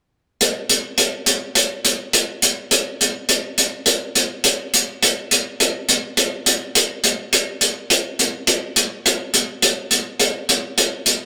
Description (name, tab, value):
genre	rock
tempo	104 BPM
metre	4/4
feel	straight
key	none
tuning	none
part	hi-hat	drums	0.4-11.2 s	none	-18 LUFS	equal	none
room	moderate booth ambience, RT60 0.2 s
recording	rough rehearsal-room recording, warm saturation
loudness	-18 LUFS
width	mono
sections	0.4-11.3 A section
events	none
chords	none